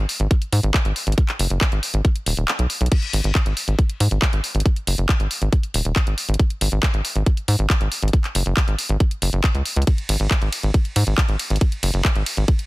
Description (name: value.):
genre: psychedelic trance.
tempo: 138 BPM.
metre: 4/4.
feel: straight.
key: G# minor.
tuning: A4 = 440 Hz.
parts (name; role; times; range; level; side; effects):
tight sequencer bass; bass; 0.0-12.4 s; D#1 to G#2; -19 LUFS; equal; none.
garage drum kit; drums; 0.1-12.7 s; crash cymbal, handclaps, hi-hat, ride cymbal; -24 LUFS; equal; none.
electronic kick drum; drums; 0.3-12.6 s; none; -18 LUFS; equal; none.
room: digital ambience.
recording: dense, heavily limited modern master.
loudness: -18 LUFS.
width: side -20 dB against mid.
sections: 0.0-12.7 A section.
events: kick drops out 2.5-2.9.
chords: none.